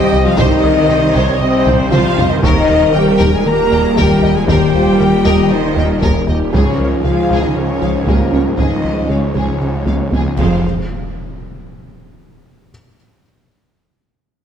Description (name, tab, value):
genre	cinematic, hybrid orchestral and electronic film score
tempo	117 BPM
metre	4/4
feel	straight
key	unclear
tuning	A4 = 440 Hz
part	warm symphonic violin section	melody	0.0-10.7 s	Ab4 to G5	-25 LUFS	left 3 dB	none
part	warm symphonic violin section	second line	0.0-10.7 s	Ab4 to Bb5	-24 LUFS	left 3 dB	none
part	warm studio viola section	accompaniment	0.0-10.7 s	Ab3 to Eb5	-22 LUFS	right 3 dB	none
part	clear French horn section	sustained chords	0.0-10.6 s	Ab3 to Bb4	-17 LUFS	left 4 dB	none
part	mellow trombone section	sustained chords	0.0-10.6 s	Ab2 to G3	-24 LUFS	right 2 dB	none
part	warbly tape-like pad	sustained chords	0.0-10.7 s	F3 to G4	-26 LUFS	left 1 dB	none
part	rubbery square bass	riff	0.0-10.3 s	C2 to Eb3	-21 LUFS	right 1 dB	none
part	snarling distorted saw bass	bass	0.0-10.7 s	Eb1 to Db2	-23 LUFS	equal	distortion
part	warm symphonic cello section	bass	0.0-10.7 s	Ab2 to Bb3	-19 LUFS	right 2 dB	none
part	felt-muted upright piano	texture	0.0-10.7 s	G3 to Eb6	-29 LUFS	left 3 dB	none
part	resonant blip pluck	arpeggios	0.1-10.3 s	C3 to Eb4	-23 LUFS	left 1 dB	phaser
part	warm symphonic double bass section	bass	0.1-10.7 s	C2 to F2	-22 LUFS	right 2 dB	none
part	taiko ensemble	drums	0.4-11.4 s	none	-20 LUFS	equal	none
part	impact	sound effects	10.4-12.4 s	none	-25 LUFS	equal	none
room	wet scoring stage reverb, RT60 1.5 s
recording	none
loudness	-11 LUFS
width	side -8 dB against mid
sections	0.0-10.6 A section; 10.6-12.7 B section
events	drum fill 1.7-2.4, 9.9-10.6; impact 10.6-12.7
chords	0.0 Cm; 2.4 Eb; 6.5 Db; 10.4 Fm; 10.6 N.C.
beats	| 0.38 0.89 1.41 1.92 | 2.43 2.94 3.46 3.97 | 4.48 4.99 5.51 6.02 | 6.53 7.05 7.56 8.07 | 8.58 9.10 9.61 10.12 | 10.63 11.15 11.66 12.17